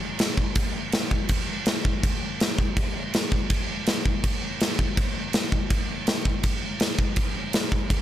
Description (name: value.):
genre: punk.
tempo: 164 BPM.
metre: 4/4.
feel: straight.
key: none.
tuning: none.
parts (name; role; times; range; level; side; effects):
big rock drum kit; drums; 0.2-8.0 s; crash cymbal, kick drum, snare drum; -23 LUFS; equal; none.
room: little or no reverb.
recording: none.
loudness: -23 LUFS.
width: side -12 dB against mid.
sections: 0.0-8.0 A section.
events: none.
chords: none.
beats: 0.19 | 0.56 0.93 1.30 1.66 | 2.03 2.40 2.77 3.13 | 3.50 3.87 4.24 4.60 | 4.97 5.34 5.70 6.07 | 6.44 6.80 7.17 7.54 | 7.90.